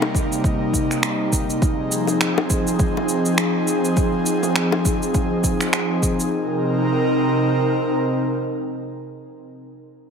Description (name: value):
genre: sunset chillout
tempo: 102 BPM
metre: 4/4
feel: swing 58% on 16ths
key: C minor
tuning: A4 = 440 Hz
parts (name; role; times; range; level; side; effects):
- airy breathy pad; sustained chords; 0.0-9.4 s; C3 to Bb4; -20 LUFS; equal; chorus
- bongos; percussion; 0.0-4.8 s; none; -26 LUFS; left 6 dB; none
- electronic kick drum; drums; 0.1-6.2 s; none; -22 LUFS; equal; overdrive
- electronic cabasa and finger snaps; drums; 0.2-6.3 s; none; -24 LUFS; right 1 dB; overdrive
room: moderate plate reverb, RT60 1.8 s, digital ambience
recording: heavily compressed radio sound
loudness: -18 LUFS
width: side -6 dB against mid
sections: 0.0-6.3 A section; 6.3-8.7 B section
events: none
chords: 0.0 Cm7; 1.6 Fm7; 6.3 Cm7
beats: 0.44 1.03 | 1.61 2.20 2.79 3.38 | 3.97 4.55 5.14 5.73 | 6.32 6.91 7.50 8.09